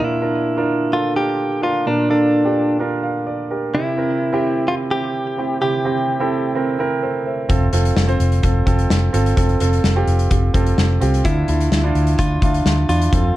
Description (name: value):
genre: piano-driven pop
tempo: 128 BPM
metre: 4/4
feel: straight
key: unclear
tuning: A4 = 444 Hz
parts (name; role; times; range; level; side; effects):
- direct-recorded clean electric guitar; melody; 0.0-6.5, 11.3-13.4 s; D4 to G4; -20 LUFS; left 1 dB; ping-pong delay
- warm grand piano; accompaniment; 0.0-13.3 s; Bb2 to F5; -20 LUFS; right 3 dB; none
- vintage muted fingered electric bass; bass; 7.5-13.3 s; F1 to F2; -17 LUFS; equal; none
- loose indie drum kit; drums; 7.5-13.2 s; hi-hat, kick drum, snare drum; -21 LUFS; left 1 dB; none
room: light reverb, studio reverb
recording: dark, warm production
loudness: -16 LUFS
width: side -15 dB against mid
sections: 0.0-13.4 A section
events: none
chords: 0.0 Bb; 3.7 C; 7.5 F; 11.2 Dmadd9